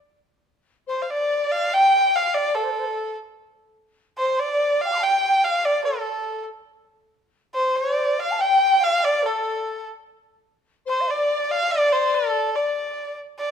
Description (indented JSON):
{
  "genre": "chinese traditional, Chinese chamber ensemble",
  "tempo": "72 BPM",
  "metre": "2/4",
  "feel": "rubato",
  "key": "D yu mode",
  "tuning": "A4 = 439 Hz",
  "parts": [
    { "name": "rich erhu", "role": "melody", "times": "0.9-13.5 s", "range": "A4 to G5", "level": "-21 LUFS", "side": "right 2 dB", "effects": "none" },
    { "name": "mellow large dizi", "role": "second line", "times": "0.9-13.5 s", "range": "A4 to D6", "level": "-23 LUFS", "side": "left 4 dB", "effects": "none" }
  ],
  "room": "light reverb",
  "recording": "minimal, uncompressed stereo recording",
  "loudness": "-19 LUFS",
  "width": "side -8 dB against mid",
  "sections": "0.0-13.4 A section",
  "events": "none",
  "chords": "none"
}